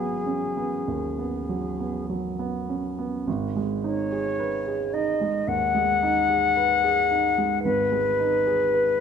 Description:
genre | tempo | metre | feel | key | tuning
classical, impressionist duo for flute and grand piano | 47-56 BPM | 4/4 | rubato | G# minor | A4 = 435 Hz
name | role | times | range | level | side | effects
mellow concert flute | melody | 0.0-9.0 s | G#4 to F#5 | -23 LUFS | left 4 dB | none
warm grand piano | accompaniment | 0.0-9.0 s | G#1 to B4 | -27 LUFS | right 5 dB | none
room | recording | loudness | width
light reverb | close, detailed microphones | -22 LUFS | side -7 dB against mid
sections
0.0-3.3 A section; 3.3-9.0 A section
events
none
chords
0.0 G#m7

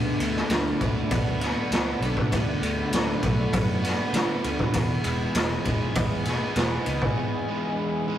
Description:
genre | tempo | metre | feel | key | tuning
rock, shoegaze and dream pop | 99 BPM | 4/4 | straight | unclear | A4 = 440 Hz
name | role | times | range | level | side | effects
sweeping resonant pad | sustained chords | 0.0-8.2 s | G#4 to B5 | -34 LUFS | left 1 dB | chorus
overdriven electric guitar | riff | 0.0-8.2 s | E2 to G#4 | -30 LUFS | right 2 dB | none
thick fuzz guitar | riff | 0.0-8.2 s | D3 to A4 | -33 LUFS | left 4 dB | distortion
vintage muted picked electric bass | bass | 0.0-7.1 s | E1 to D3 | -31 LUFS | equal | none
raw garage drum kit | drums | 0.2-7.2 s | kick drum, ride cymbal, snare drum | -26 LUFS | equal | none
room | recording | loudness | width
moderate small room reverb, RT60 0.5 s | rough rehearsal-room recording, tube saturation | -23 LUFS | side -11 dB against mid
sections
0.0-8.2 A section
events
break 7.2-8.2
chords
0.0 D6; 4.7 Emaj7

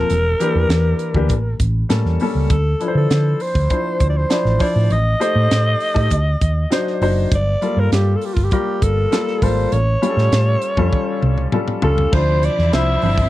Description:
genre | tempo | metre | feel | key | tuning
polished 1980s jazz-funk pop | 100 BPM | 4/4 | straight | D minor | A4 = 440 Hz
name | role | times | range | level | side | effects
breathy alto saxophone | melody | 0.0-13.3 s | F4 to E5 | -21 LUFS | equal | slapback echo
warm grand piano | accompaniment | 0.0-13.3 s | E3 to A5 | -22 LUFS | left 3 dB | wide subtle chorus
hollow-body short-scale fingered electric bass | bass | 0.0-13.3 s | E1 to D3 | -17 LUFS | equal | none
tight funk drum kit | drums | 0.1-13.3 s | crash cymbal, hi-hat, kick drum, snare drum, toms | -21 LUFS | right 1 dB | none
warm studio string section | sustained chords | 12.1-13.3 s | C3 to D5 | -27 LUFS | left 2 dB | none
congas | percussion | 12.4-13.2 s | none | -28 LUFS | right 11 dB | none
room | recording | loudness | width
light reverb | dry, close 1970s-style studio recording | -15 LUFS | side -15 dB against mid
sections
0.0-12.1 A section; 12.1-13.3 B section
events
drum fill 10.9-12.1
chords
0.1 Em7b5; 1.3 A7b9; 2.5 Dm9; 4.9 Am7b5; 6.1 D7b9; 7.3 Gm9; 9.7 A7b13; 12.1 Dm9

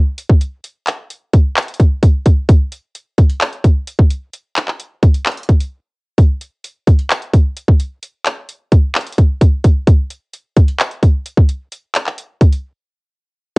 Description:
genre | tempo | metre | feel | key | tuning
hip hop | 130 BPM | 4/4 | half-time | none | none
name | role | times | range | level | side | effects
trap drum kit | drums | 0.2-12.6 s | handclaps, hi-hat, kick drum | -11 LUFS | equal | vintage 12-bit sampler grit, cassette tape
room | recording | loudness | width
little or no reverb | home recording on cassette | -12 LUFS | side -33 dB against mid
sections
0.0-13.6 A section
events
break 5.7-6.2, 12.6-13.6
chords
none

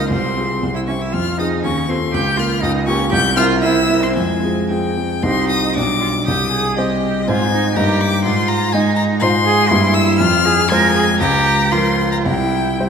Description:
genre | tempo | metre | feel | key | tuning
quick classical-period movement for piano trio | 109-125 BPM | 2/4 | rubato | F minor, C minor from 5.2 s, F minor from 9.2 s | A4 = 440 Hz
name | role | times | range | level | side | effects
rich violin | melody | 0.0-12.9 s | Eb5 to G6 | -19 LUFS | left 4 dB | none
rich cello | second line | 0.0-12.9 s | Ab3 to Bb4 | -20 LUFS | right 4 dB | none
dark grand piano | accompaniment | 0.0-12.9 s | B1 to Eb5 | -17 LUFS | equal | none
room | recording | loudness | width
wet concert hall reverb, RT60 2.0 s | minimal, uncompressed stereo recording | -14 LUFS | side -6 dB against mid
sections
0.0-5.2 A section; 5.2-12.9 B section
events
none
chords
0.1 Fm/C; 0.6 C; 1.1 Fm; 1.6 F7/Eb; 2.1 Bbm/Db; 2.6 Gm7b5/Db; 3.1 C7; 4.2 Fm; 5.2 Cm; 5.8 G/B; 6.3 Cm; 7.3 Ab; 7.8 Eb/G; 8.3 Ab5; 9.2 Fm/Ab; 9.7 Edim/G; 10.2 Fm; 11.2 Bbm/Db; 12.3 C

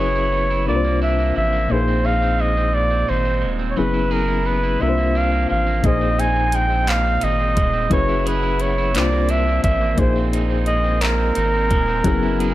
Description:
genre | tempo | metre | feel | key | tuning
slow six-eight R&B | 58 BPM (dotted quarters) | 6/8 | straight | unclear | A4 = 437 Hz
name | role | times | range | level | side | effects
warm flugelhorn | melody | 0.0-12.5 s | Bb4 to Ab5 | -21 LUFS | right 1 dB | slapback echo
electric guitar at the edge of break-up | second line | 0.0-12.5 s | Bb2 to G#4 | -27 LUFS | right 5 dB | none
reed electric piano | accompaniment | 0.0-12.5 s | Bb2 to C5 | -24 LUFS | left 4 dB | fast tremolo
round analog bass | bass | 0.0-12.5 s | Eb1 to C2 | -21 LUFS | equal | none
percussive tonewheel organ | sustained chords | 5.8-12.5 s | F4 to C6 | -32 LUFS | right 1 dB | chorus vibrato, slow rotary speaker
smooth R&B drum kit | drums | 5.8-12.5 s | handclaps, hi-hat, kick drum | -22 LUFS | equal | none
room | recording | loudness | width
digital ambience | none | -16 LUFS | side -15 dB against mid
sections
0.0-12.5 A section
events
none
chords
0.0 F#9sus4; 0.7 C9sus4; 1.7 Bb9sus4; 3.8 F#9sus4; 4.8 C9sus4; 5.8 Bb9sus4; 7.9 F#9sus4; 8.9 C9sus4; 10.0 Bb9sus4

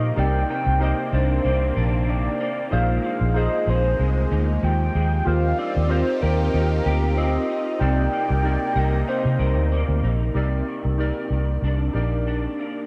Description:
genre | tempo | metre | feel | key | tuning
indie pop | 94 BPM | 4/4 | swing 55% on 16ths | C minor | A4 = 441 Hz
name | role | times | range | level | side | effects
soft octave-layered synth lead | melody | 0.0-10.0 s | Bb4 to G5 | -29 LUFS | equal | subtle chorus, delay
electric guitar through a small old amp | accompaniment | 0.0-12.9 s | F2 to Bb4 | -32 LUFS | equal | ensemble chorus, warbly pitch drift
warbly lo-fi synth keys | accompaniment | 0.0-12.9 s | Eb4 to D5 | -32 LUFS | equal | chorus, cassette tape
phased analog pad | sustained chords | 0.0-10.3 s | C3 to Bb4 | -33 LUFS | equal | phaser, chorus
vintage muted fingered electric bass | bass | 0.0-12.5 s | Bb1 to C3 | -23 LUFS | equal | none
room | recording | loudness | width
moderate lush hall reverb, RT60 2.8 s | dreamy mix soaked in reverb | -22 LUFS | mono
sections
0.0-10.4 A section; 10.4-12.9 B section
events
none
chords
0.2 Cm9; 2.7 Bb7sus4; 5.3 Eb69; 7.8 Cm9

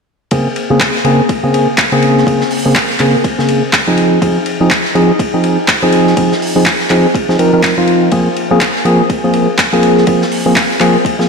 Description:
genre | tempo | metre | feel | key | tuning
deep house | 123 BPM | 4/4 | swing 59% on 16ths | Bb minor | A4 = 440 Hz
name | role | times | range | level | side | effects
percussive organ stab | stabs | 0.3-11.3 s | Db3 to Bb4 | -11 LUFS | equal | chorus, sidechain pumping, ping-pong delay
electronic kick drum | drums | 0.3-11.2 s | none | -19 LUFS | equal | high-pass filter on kick, studio reverb
vintage drum kit | drums | 0.3-11.3 s | hi-hat, ride cymbal, snare drum | -22 LUFS | left 2 dB | high-pass filter on cymbals, studio reverb, high-pass filter on hats, high-pass filter on snare, high-pass filter on room
electronic handclaps | drums | 0.8-10.9 s | none | -16 LUFS | equal | studio reverb
room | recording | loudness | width
wet lush hall reverb, RT60 2.0 s, small room ambience | dreamy mix soaked in reverb | -9 LUFS | side -5 dB against mid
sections
0.3-11.3 A section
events
none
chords
0.3 Bbm9; 4.0 Fm7; 8.1 Ebsus4 (rootless)

